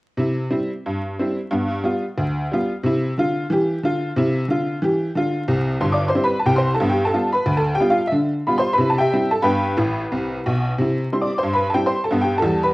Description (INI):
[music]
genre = jazz, stride piano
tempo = 181 BPM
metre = 4/4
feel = swing 59% on 8ths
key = C major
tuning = A4 = 440 Hz
[part]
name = tack piano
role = solo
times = 0.2-12.7 s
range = G1 to D6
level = -18 LUFS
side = equal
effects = cassette tape
[sound]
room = moderate spring reverb, RT60 1.3 s, studio reverb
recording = home recording on cassette, vinyl crackle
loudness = -18 LUFS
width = side -20 dB against mid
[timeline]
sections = 0.2-5.5 A section; 5.5-12.7 B section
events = honky-tonk piano fill 9.8-10.8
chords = 0.2 C; 1.5 G7; 2.8 C; 6.8 G7; 8.1 G7/D; 8.8 C; 9.5 G; 10.8 C; 12.1 G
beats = | 0.19 0.52 0.85 1.18 | 1.51 1.84 2.18 2.51 | 2.84 3.17 3.50 3.83 | 4.17 4.50 4.83 5.16 | 5.49 5.82 6.15 6.48 | 6.81 7.14 7.47 7.80 | 8.13 8.46 8.80 9.13 | 9.46 9.79 10.12 10.45 | 10.78 11.11 11.44 11.77 | 12.10 12.43